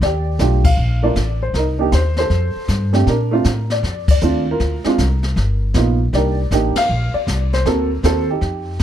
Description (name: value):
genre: jazz piano trio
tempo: 157 BPM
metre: 4/4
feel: swing 65% on 8ths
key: unclear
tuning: A4 = 440 Hz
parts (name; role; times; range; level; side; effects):
- dark upright piano; melody; 0.0-8.8 s; Ab3 to F5; -19 LUFS; right 2 dB; plate reverb
- upright bass; bass; 0.0-8.8 s; G1 to Bb2; -18 LUFS; equal; none
- jazz brush drum kit; drums; 0.0-8.8 s; brushed snare drum, crash cymbal, hi-hat, kick drum, ride cymbal, snare drum; -21 LUFS; left 2 dB; none
room: little or no reverb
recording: dark, warm production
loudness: -15 LUFS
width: side -10 dB against mid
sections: 0.0-8.8 A section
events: band accent 0.6, 4.0, 6.7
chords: 0.0 Ebmaj9#11; 1.5 Cm7; 2.3 Fadd9; 3.1 Bbmaj9; 4.6 Dm7; 5.4 G7alt; 6.1 Cm9; 7.7 D7b13